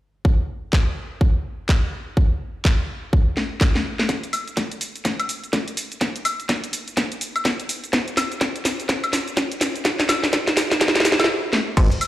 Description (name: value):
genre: bass house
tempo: 125 BPM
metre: 4/4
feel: swing 60% on 16ths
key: unclear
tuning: A4 = 440 Hz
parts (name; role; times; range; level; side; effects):
- electronic kick drum; drums; 0.2-11.9 s; none; -19 LUFS; equal; high-pass filter on kick, high-pass filter on room
- garage drum kit; drums; 0.7-12.1 s; crash cymbal, handclaps, hi-hat, shaker, snare drum, woodblock; -21 LUFS; equal; none
- metallic wobble bass; bass; 11.8-11.9 s; G#1; -18 LUFS; equal; chorus, overdrive, sidechain pumping
room: moderate lush hall reverb, RT60 2.1 s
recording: played on a big sound system in a bare room, large studio reverb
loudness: -19 LUFS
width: side -14 dB against mid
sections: 0.2-4.1 A section; 4.1-11.8 B section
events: drum fill 3.4-4.1, 4.1-11.3, 11.5; build-up 4.1-11.8; stop 11.3-11.8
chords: none